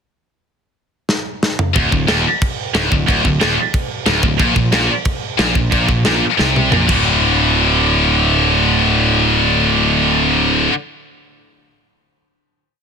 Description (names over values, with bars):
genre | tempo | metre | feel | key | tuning
heavy metal | 182 BPM | 4/4 | straight | unclear | A4 = 440 Hz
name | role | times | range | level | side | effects
tight metal drum kit | drums | 1.1-7.0 s | crash cymbal, kick drum, snare drum, toms | -18 LUFS | equal | none
heavy high-gain guitar | riff | 1.7-10.7 s | D2 to D3 | -17 LUFS | left 14 dB | distortion
heavy high-gain guitar | riff | 1.8-10.7 s | D2 to D3 | -17 LUFS | right 11 dB | distortion
fuzz picked electric bass | bass | 1.8-10.7 s | D1 to C2 | -19 LUFS | equal | overdrive
room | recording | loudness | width
small room ambience | dense, heavily limited modern master | -12 LUFS | side -6 dB against mid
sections
0.4-1.8 pickup bar; 1.8-7.0 riff; 7.0-9.7 final hit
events
drum fill 1.1-1.8, 6.4-7.0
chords
0.4 N.C.; 4.4 Bbsus2; 6.9 D5